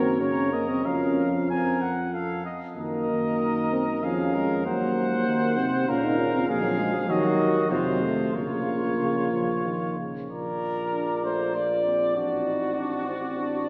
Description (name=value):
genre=classical, brass quintet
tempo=96 BPM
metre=3/4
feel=rubato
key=Bb minor, Bb major from 10.3 s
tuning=A4 = 441 Hz
part: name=clear trumpet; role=melody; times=0.0-13.7 s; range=C5 to Ab5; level=-34 LUFS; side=equal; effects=none
part: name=clear flugelhorn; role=second line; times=0.0-13.7 s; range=F4 to D5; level=-32 LUFS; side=equal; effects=none
part: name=clear trombone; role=accompaniment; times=0.0-13.7 s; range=Bb2 to Eb4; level=-33 LUFS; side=equal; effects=none
part: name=mellow French horn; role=accompaniment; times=0.0-13.7 s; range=F3 to F4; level=-30 LUFS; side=equal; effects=none
part: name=warm bass trombone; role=bass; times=0.0-13.7 s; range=A1 to Gb2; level=-34 LUFS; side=equal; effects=none
room=wet church reverb, RT60 2.8 s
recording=recorded in a church or concert hall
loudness=-26 LUFS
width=mono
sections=0.0-10.3 A section; 10.3-13.7 A section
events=none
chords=0.0 Gb; 0.9 Fsus4; 2.1 F; 2.8 Ebm/Gb; 4.0 Db/F; 4.7 Cdim/Eb; 5.9 Bbm/Db; 6.5 Ddim; 7.1 Ebm; 7.7 F; 8.3 Bbm; 10.3 Bb; 12.2 D7/A